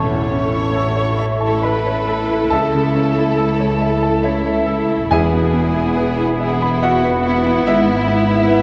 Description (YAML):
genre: classical, romantic movement for piano and orchestra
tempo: 70 BPM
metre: 3/4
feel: rubato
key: A major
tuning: A4 = 440 Hz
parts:
  - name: clear concert grand piano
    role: melody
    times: 0.0-8.6 s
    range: A1 to C#6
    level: -22 LUFS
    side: equal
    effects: none
  - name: rich chamber violin section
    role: melody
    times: 0.0-8.6 s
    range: E4 to A4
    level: -30 LUFS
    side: equal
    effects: none
  - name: dark clarinet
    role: second line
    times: 0.0-8.6 s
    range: E4 to A4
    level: -30 LUFS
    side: equal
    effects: none
  - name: flute section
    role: second line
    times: 0.0-8.6 s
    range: E5 to C#6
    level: -29 LUFS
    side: equal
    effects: none
  - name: rich studio violin section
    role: second line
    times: 0.0-8.6 s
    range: A3 to E4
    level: -30 LUFS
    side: equal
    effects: none
  - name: rich symphonic viola section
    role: accompaniment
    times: 0.0-8.6 s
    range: E4 to C#5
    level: -28 LUFS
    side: equal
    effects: none
  - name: warm bassoon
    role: accompaniment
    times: 0.0-8.6 s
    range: B3 to E4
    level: -29 LUFS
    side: equal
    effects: none
  - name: mellow French horn section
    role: sustained chords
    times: 0.0-8.6 s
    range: B3 to E4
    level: -29 LUFS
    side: equal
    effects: none
  - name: warm trombone section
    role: sustained chords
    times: 0.0-8.6 s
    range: E3 to B3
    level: -29 LUFS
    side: equal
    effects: none
  - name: rich chamber cello section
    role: bass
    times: 0.0-8.6 s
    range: C#2 to A2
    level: -26 LUFS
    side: equal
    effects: none
  - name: rich chamber double bass section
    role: bass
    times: 0.0-8.6 s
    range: E1 to C#2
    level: -26 LUFS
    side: equal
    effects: none
  - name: timpani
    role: percussion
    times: 5.1-6.4 s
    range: E2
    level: -31 LUFS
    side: equal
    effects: none
room: wet scoring stage reverb, RT60 1.9 s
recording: worn, warbling old tape, cassette tape, warbly pitch drift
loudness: -17 LUFS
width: mono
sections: 0.0-8.6 A section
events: none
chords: 0.0 A; 2.5 A/C#; 5.1 E; 7.7 E/G#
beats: 0.76 1.64 | 2.51 3.39 4.25 | 5.11 5.97 6.83 | 7.67 8.50